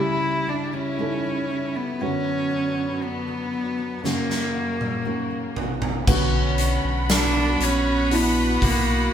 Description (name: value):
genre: pop ballad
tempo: 59 BPM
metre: 4/4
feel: straight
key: B harmonic minor from 6.1 s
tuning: A4 = 440 Hz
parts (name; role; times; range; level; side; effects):
- warm cello; melody; 0.0-9.1 s; A#3 to E4; -25 LUFS; right 1 dB; none
- felt-muted upright piano; accompaniment; 0.0-9.1 s; C#2 to A4; -28 LUFS; right 1 dB; none
- rich symphonic string section; sustained chords; 0.0-9.1 s; F#2 to B5; -31 LUFS; left 1 dB; none
- fingerpicked steel-string acoustic guitar; arpeggios; 0.0-9.1 s; F#2 to G4; -35 LUFS; left 6 dB; none
- huge arena drum kit; drums; 4.0-8.9 s; crash cymbal, hi-hat, kick drum, snare drum, toms; -25 LUFS; equal; none
- rich chamber cello section; second line; 6.1-9.1 s; B3 to C#4; -30 LUFS; right 1 dB; none
- saturated sub bass; bass; 6.1-9.1 s; A#1 to B1; -24 LUFS; equal; none
- tambourine; percussion; 7.1-7.3 s; none; -35 LUFS; right 6 dB; none
room: moderate stone room reverb, RT60 1.3 s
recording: band playing live in one room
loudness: -21 LUFS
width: side -9 dB against mid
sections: 0.0-6.1 A section; 6.1-9.1 B section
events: drum fill 4.0-6.1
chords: 0.0 C#dim; 2.0 Bm/F#; 4.0 F#; 6.1 Bm